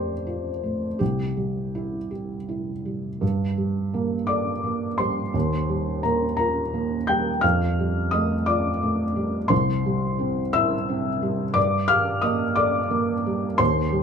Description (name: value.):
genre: neoclassical minimalist piano.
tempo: 53-60 BPM (dotted quarters).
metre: 6/8.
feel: rubato.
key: G minor.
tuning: A4 = 440 Hz.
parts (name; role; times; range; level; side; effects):
felt-muted upright piano; solo; 0.0-14.0 s; C2 to G6; -22 LUFS; equal; none.
room: moderate studio reverb, RT60 0.6 s.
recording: band playing live in one room, lossy compression artefacts.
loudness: -22 LUFS.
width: side -6 dB against mid.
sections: 0.0-3.2 A section; 3.2-14.0 A section.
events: none.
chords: 0.0 Fadd9; 1.0 C; 3.2 Gmadd9; 5.3 Ebadd9; 7.4 Fadd9; 9.5 C; 11.6 Gmadd9.